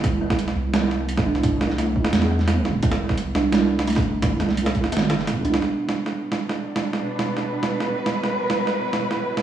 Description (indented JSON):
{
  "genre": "half-time drum and bass",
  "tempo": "172 BPM",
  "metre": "4/4",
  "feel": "half-time",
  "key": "B phrygian",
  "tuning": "A4 = 443 Hz",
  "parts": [
    { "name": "deep soft wobble bass", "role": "bass", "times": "0.0-5.6 s", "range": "G1 to E2", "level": "-24 LUFS", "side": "right 2 dB", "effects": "chorus" },
    { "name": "boom bap sampler-style drum kit", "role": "drums", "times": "0.0-9.4 s", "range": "hi-hat, snare drum", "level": "-24 LUFS", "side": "right 2 dB", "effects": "overdrive" },
    { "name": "electronic kick drum", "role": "drums", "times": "0.0-4.8 s", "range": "none", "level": "-24 LUFS", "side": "right 1 dB", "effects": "none" },
    { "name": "kalimba", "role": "arpeggios", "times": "0.2-5.6 s", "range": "A3 to D4", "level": "-26 LUFS", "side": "right 1 dB", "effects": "vintage 12-bit sampler grit, tape echo" },
    { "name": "warm symphonic cello section", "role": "sustained chords", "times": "5.6-9.4 s", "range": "B2 to B4", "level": "-25 LUFS", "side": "right 1 dB", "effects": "sidechain pumping" }
  ],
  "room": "moderate echo chamber reverb, RT60 1.8 s",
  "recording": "played on a big sound system in a bare room, stone room reverb, small room ambience",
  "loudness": "-20 LUFS",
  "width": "side -10 dB against mid",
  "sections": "0.0-5.6 A section; 5.6-9.4 B section",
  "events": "none",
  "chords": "0.0 C; 5.6 Bm"
}